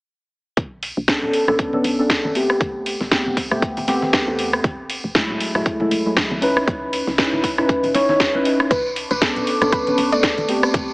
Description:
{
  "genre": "deep house",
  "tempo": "118 BPM",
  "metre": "4/4",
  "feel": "swing 57% on 16ths",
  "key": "unclear",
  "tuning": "A4 = 441 Hz",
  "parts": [
    { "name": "woody FM bass", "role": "bass", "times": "0.6-10.9 s", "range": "F#1 to E2", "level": "-29 LUFS", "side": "equal", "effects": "tube saturation, sidechain pumping" },
    { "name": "breakbeat sampler-style drum kit", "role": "drums", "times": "0.6-10.9 s", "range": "hi-hat, snare drum", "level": "-30 LUFS", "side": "equal", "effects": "none" },
    { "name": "electronic kick drum", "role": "drums", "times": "0.6-10.9 s", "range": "none", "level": "-22 LUFS", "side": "equal", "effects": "none" },
    { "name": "congas", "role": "percussion", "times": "0.6-10.9 s", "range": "none", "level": "-34 LUFS", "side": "equal", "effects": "sidechain pumping on perc" },
    { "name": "house drum kit", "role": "drums", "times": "0.8-10.9 s", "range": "hi-hat, rim click, snare drum", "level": "-22 LUFS", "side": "equal", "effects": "none" },
    { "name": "deep mellow chord stab", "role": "stabs", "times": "1.1-10.9 s", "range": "F#3 to C#5", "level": "-20 LUFS", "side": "equal", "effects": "chorus, phaser, sidechain pumping, tape echo" },
    { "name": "soft round pluck", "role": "melody", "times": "8.7-10.5 s", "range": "B4 to D5", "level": "-23 LUFS", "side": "equal", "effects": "wide subtle chorus, cassette tape, analog delay" },
    { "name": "warbly tape-like pad", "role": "sustained chords", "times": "8.7-10.9 s", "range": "A4 to D6", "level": "-26 LUFS", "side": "equal", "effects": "chorus, built-in reverb, sidechain pumping" },
    { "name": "tambourine", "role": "percussion", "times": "8.7-10.9 s", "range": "none", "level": "-30 LUFS", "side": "equal", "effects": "none" }
  ],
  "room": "moderate plate reverb, RT60 1.6 s",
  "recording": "heavily compressed radio sound, AM radio sound",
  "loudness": "-17 LUFS",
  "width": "side -25 dB against mid",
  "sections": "0.6-10.9 A section",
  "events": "none",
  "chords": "0.6 Bm9; 2.6 Am9; 4.6 F#m9; 6.7 C#m9; 8.7 Bm9"
}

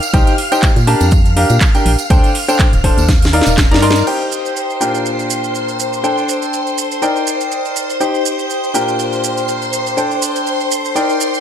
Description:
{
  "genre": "piano house",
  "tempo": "122 BPM",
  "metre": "4/4",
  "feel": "swing 55% on 16ths",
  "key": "G minor",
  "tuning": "A4 = 440 Hz",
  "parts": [
    { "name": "string machine, violins", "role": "sustained chords", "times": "0.0-11.4 s", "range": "C5 to F6", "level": "-20 LUFS", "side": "left 1 dB", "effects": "ensemble chorus, sidechain pumping" },
    { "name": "house drum kit", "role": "drums", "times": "0.0-11.4 s", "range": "crash cymbal, handclaps, hi-hat, shaker, snare drum", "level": "-20 LUFS", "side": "right 2 dB", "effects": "none" },
    { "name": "tambourine", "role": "percussion", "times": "0.0-4.0 s", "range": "none", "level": "-26 LUFS", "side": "right 7 dB", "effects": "none" },
    { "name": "clear baby grand piano", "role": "riff", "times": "0.1-11.4 s", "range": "Bb2 to C6", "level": "-17 LUFS", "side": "left 1 dB", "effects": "sidechain pumping, tape echo" },
    { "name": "organ-like FM bass", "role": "bass", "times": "0.1-4.0 s", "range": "D1 to Bb2", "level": "-15 LUFS", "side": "equal", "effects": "tube saturation, sidechain pumping" },
    { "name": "electronic kick drum", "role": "drums", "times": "0.1-3.7 s", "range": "none", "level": "-12 LUFS", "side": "equal", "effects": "none" }
  ],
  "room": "light reverb",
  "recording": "none",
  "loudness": "-12 LUFS",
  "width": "side -9 dB against mid",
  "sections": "0.0-4.1 A section; 4.1-11.4 B section",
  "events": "drum fill 3.1-4.1",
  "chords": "0.1 Cm; 0.9 Gm; 2.1 D7sus4; 3.1 Ebmaj7; 4.1 Cm; 4.8 Gm/Bb; 6.0 D7sus4; 7.0 Ebmaj7; 8.0 Cm; 8.7 Gm/Bb; 10.0 D7sus4"
}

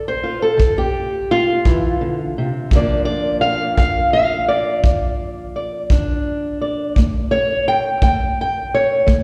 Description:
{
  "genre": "acoustic country blues, solo or duo",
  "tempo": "57 BPM (dotted quarters)",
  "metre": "12/8",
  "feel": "straight",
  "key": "D minor",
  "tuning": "A4 = 440 Hz",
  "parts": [
    { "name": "fingerpicked steel-string acoustic guitar", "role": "melody", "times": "0.0-9.2 s", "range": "F2 to G5", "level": "-20 LUFS", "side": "equal", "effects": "slapback echo" },
    { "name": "kick drum", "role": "drums", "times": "0.6-9.2 s", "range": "none", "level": "-18 LUFS", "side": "equal", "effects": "none" }
  ],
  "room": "light reverb, studio reverb",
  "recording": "live gig heard through the venue's PA, recital hall reverb",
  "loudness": "-18 LUFS",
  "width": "mono",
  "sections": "0.0-9.2 A section",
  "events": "steel-string acoustic guitar solo 0.0-9.2",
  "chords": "0.0 Dm; 2.7 Bb; 7.0 A"
}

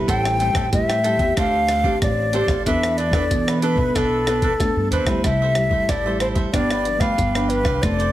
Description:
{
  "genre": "samba and choro",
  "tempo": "93 BPM",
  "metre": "4/4",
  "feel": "straight",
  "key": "unclear",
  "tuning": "A4 = 438 Hz",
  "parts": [
    { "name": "cavaquinho", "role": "accompaniment", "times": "0.0-8.1 s", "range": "D4 to G5", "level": "-28 LUFS", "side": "right 4 dB", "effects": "none" },
    { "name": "nylon-string guitar", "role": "accompaniment", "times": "0.0-8.1 s", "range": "G2 to A4", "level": "-25 LUFS", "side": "equal", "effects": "none" },
    { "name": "upright bass", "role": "bass", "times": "0.0-8.1 s", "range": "F1 to E3", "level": "-24 LUFS", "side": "equal", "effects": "none" },
    { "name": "concert flute", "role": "melody", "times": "0.1-8.1 s", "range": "A4 to G5", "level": "-22 LUFS", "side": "left 1 dB", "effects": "slapback echo" },
    { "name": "jungle sampler-style drum kit", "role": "drums", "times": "0.1-8.1 s", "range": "hi-hat, kick drum, rim click", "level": "-24 LUFS", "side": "equal", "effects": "none" }
  ],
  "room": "light reverb",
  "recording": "heavily compressed radio sound, multiband compression",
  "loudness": "-17 LUFS",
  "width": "side -14 dB against mid",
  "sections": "0.0-5.2 A section; 5.2-8.1 B section",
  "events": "none",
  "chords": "0.1 Am7; 1.4 Dm7; 2.7 E7sus4; 5.2 C6; 6.5 G7"
}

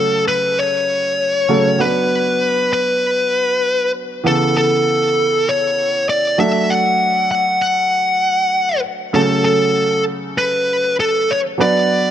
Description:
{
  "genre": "pop",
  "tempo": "98 BPM",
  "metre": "4/4",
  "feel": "straight",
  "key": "unclear",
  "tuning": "A4 = 442 Hz",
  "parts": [
    { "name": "fuzz lead guitar", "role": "melody", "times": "0.0-12.1 s", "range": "A4 to F#5", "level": "-15 LUFS", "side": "left 1 dB", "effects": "distortion, ping-pong delay" },
    { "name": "clear grand piano", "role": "accompaniment", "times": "0.0-12.1 s", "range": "C#3 to B4", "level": "-20 LUFS", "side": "right 2 dB", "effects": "none" }
  ],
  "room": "moderate plate reverb, RT60 3.0 s",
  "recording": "none",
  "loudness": "-14 LUFS",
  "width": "side -10 dB against mid",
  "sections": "0.0-12.1 A section",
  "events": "none",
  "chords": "0.0 F#m/C#; 1.8 Bm; 4.2 Aadd9; 6.4 D; 9.1 F#m/C#; 11.6 Bm"
}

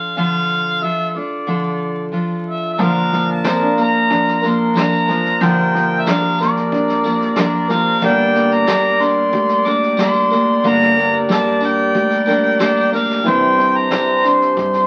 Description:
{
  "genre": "acoustic folk duo or small band",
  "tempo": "92 BPM",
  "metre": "4/4",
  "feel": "straight",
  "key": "unclear",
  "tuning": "A4 = 435 Hz",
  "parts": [
    { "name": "warm harmonica", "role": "melody", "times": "0.0-14.9 s", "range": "D5 to D6", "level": "-22 LUFS", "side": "equal", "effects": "none" },
    { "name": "picked steel-string acoustic guitar", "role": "accompaniment", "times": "0.0-14.9 s", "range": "G2 to Bb4", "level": "-23 LUFS", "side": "equal", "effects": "none" },
    { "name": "mellow accordion", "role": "second line", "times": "2.8-14.9 s", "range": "Bb4 to D5", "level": "-21 LUFS", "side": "equal", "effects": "none" },
    { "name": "pedal harmonium", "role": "sustained chords", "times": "2.8-14.9 s", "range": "C3 to D5", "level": "-29 LUFS", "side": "equal", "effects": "none" },
    { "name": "felt-muted upright piano", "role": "arpeggios", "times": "2.8-14.9 s", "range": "E3 to G4", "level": "-24 LUFS", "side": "equal", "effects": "none" },
    { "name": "upright bass", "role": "bass", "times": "2.8-14.9 s", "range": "G1 to G2", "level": "-31 LUFS", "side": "equal", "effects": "none" },
    { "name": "vintage brush drum kit", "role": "drums", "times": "2.8-14.8 s", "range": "kick drum, snare drum", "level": "-28 LUFS", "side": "equal", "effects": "none" },
    { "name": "tambourine", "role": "percussion", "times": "3.4-14.8 s", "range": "none", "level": "-41 LUFS", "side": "equal", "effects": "none" }
  ],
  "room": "wet studio reverb, RT60 0.6 s",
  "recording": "very old 78 rpm record, vinyl crackle",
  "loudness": "-16 LUFS",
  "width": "mono",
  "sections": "0.0-2.8 A section; 2.8-14.9 B section",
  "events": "none",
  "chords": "0.0 Dm; 2.8 Bb; 8.0 Gm; 13.3 Cadd9"
}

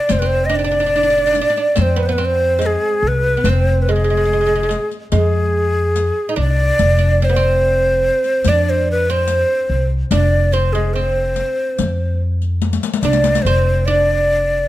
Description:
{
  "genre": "Turkish makam ensemble",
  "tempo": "72 BPM",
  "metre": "4/4",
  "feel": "straight",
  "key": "F makam nikriz",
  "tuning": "A4 = 440 Hz",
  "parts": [
    { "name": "breathy bright ney", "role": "melody", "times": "0.0-14.7 s", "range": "Ab4 to Eb5", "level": "-17 LUFS", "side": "equal", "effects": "none" },
    { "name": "oud", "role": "second line", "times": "0.0-14.7 s", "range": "Ab3 to Eb4", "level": "-23 LUFS", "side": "right 4 dB", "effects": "none" },
    { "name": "upright bass", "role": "bass", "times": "0.1-14.7 s", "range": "F1 to F2", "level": "-17 LUFS", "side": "equal", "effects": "none" },
    { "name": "riq", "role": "percussion", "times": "0.1-13.7 s", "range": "none", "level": "-24 LUFS", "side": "left 8 dB", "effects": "none" }
  ],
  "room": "light reverb",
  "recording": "close, detailed microphones",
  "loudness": "-14 LUFS",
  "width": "side -15 dB against mid",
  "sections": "0.1-14.7 A section",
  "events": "drum fill 12.6-13.4",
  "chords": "none"
}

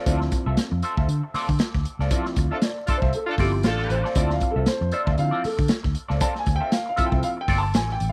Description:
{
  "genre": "funk",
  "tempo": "117 BPM",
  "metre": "4/4",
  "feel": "swing 56% on 16ths",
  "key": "D minor",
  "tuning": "A4 = 440 Hz",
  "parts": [
    { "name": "semi-hollow electric guitar", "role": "accompaniment", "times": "0.0-7.9 s", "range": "C4 to E5", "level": "-32 LUFS", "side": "equal", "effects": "wah, spring reverb" },
    { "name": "dark upright piano", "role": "stabs", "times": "0.0-8.1 s", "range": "F3 to A5", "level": "-30 LUFS", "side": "equal", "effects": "none" },
    { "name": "vintage muted fingered electric bass", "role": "bass", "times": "0.1-8.1 s", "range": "G1 to D3", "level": "-27 LUFS", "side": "equal", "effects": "none" },
    { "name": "crunchy breakbeat drum kit", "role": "drums", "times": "0.1-8.1 s", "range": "hi-hat, kick drum, snare drum", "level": "-27 LUFS", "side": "equal", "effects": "none" },
    { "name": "clear horn section", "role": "second line", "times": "2.5-4.0 s", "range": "D4 to A4", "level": "-30 LUFS", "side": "equal", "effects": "none" }
  ],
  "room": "little or no reverb",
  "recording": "dry, close 1970s-style studio recording, vinyl crackle",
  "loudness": "-23 LUFS",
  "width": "mono",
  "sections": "0.0-8.1 A section",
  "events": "upright piano solo 0.0-8.1; band accent 2.1-4.2",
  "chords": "0.0 Dm7"
}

